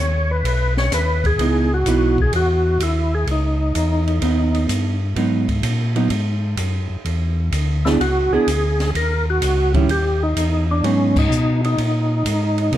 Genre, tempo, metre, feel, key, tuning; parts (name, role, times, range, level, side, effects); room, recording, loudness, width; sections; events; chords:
soul jazz organ trio; 127 BPM; 4/4; swing 69% on 8ths; A4 = 441 Hz
overdriven tonewheel organ; melody; 0.0-4.7, 7.9-12.8 s; C#4 to C#5; -21 LUFS; equal; slow rotary speaker, chorus vibrato
mellow tonewheel organ; bass; 0.0-12.8 s; B1 to C3; -19 LUFS; equal; chorus vibrato, slow rotary speaker
open jazz drum kit; drums; 0.4-12.8 s; crash cymbal, hi-hat, kick drum, ride cymbal, snare drum; -26 LUFS; right 1 dB
hollow-body jazz guitar; accompaniment; 1.4-12.8 s; D#3 to G#4; -21 LUFS; right 3 dB
moderate large studio reverb, RT60 1.2 s; dark, warm production; -16 LUFS; side -12 dB against mid
0.0-12.8 A section
band accent 11.1
0.0 C#m9; 5.2 G#m7; 7.0 E7; 8.9 D#7b9; 10.8 G#m7